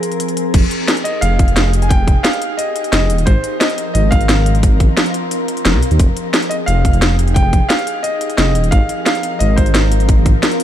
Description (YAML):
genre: liquid drum and bass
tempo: 176 BPM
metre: 4/4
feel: straight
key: F minor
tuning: A4 = 440 Hz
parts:
  - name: glassy FM pad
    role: sustained chords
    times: 0.0-10.6 s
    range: F3 to Bb4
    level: -22 LUFS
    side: left 1 dB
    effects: ensemble chorus, built-in reverb, sidechain pumping
  - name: drum and bass drum kit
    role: drums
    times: 0.0-10.6 s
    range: crash cymbal, hi-hat, snare drum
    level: -19 LUFS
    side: equal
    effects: small room ambience
  - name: dark detuned saw bass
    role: bass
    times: 0.5-10.3 s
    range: Eb1 to Eb2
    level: -14 LUFS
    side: equal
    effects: none
  - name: electronic kick drum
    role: drums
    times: 0.5-10.3 s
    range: none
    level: -12 LUFS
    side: equal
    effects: small room ambience
  - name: bright concert grand piano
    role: melody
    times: 1.0-10.0 s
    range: C5 to Ab5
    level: -21 LUFS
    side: equal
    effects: vintage 12-bit sampler grit, digital delay
room: digital ambience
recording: dark, warm production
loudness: -12 LUFS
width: side -11 dB against mid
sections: 0.5-10.6 A section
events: drop 0.5-10.6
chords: 0.0 Ab69; 0.5 Fm9; 3.3 Ab69; 6.0 Fm9; 8.7 Ab69